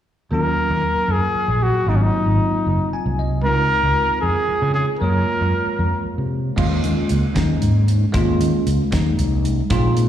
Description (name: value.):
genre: electric jazz fusion.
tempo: 77 BPM (dotted quarters).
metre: 6/8.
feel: straight.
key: Eb dorian.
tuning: A4 = 442 Hz.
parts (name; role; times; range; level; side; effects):
breathy trumpet; melody; 0.3-6.0 s; Db4 to Bb4; -20 LUFS; equal; plate reverb, slapback echo, analog delay.
bell-like tine electric piano; accompaniment; 0.3-10.1 s; Gb3 to Ab5; -23 LUFS; equal; fast stereo tremolo, lush chorus, slapback echo.
fretless electric bass; bass; 0.3-10.1 s; Gb1 to Eb3; -19 LUFS; equal; none.
damped 70s drum kit; drums; 6.6-10.1 s; crash cymbal, hi-hat, kick drum, snare drum; -25 LUFS; equal; none.
room: light reverb.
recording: live gig heard through the venue's PA, recital hall reverb.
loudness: -16 LUFS.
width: side -10 dB against mid.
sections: 0.3-6.6 A section; 6.6-10.1 B section.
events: tine electric piano fill 2.7-3.5.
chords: 0.3 Ebm9; 1.9 Ab13; 3.5 Dbmaj9; 5.0 Gbmaj9; 6.6 Eb9sus4.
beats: | 0.33 1.11 | 1.89 2.68 | 3.46 4.24 | 5.02 5.81 | 6.59 7.37 | 8.15 8.93 | 9.71.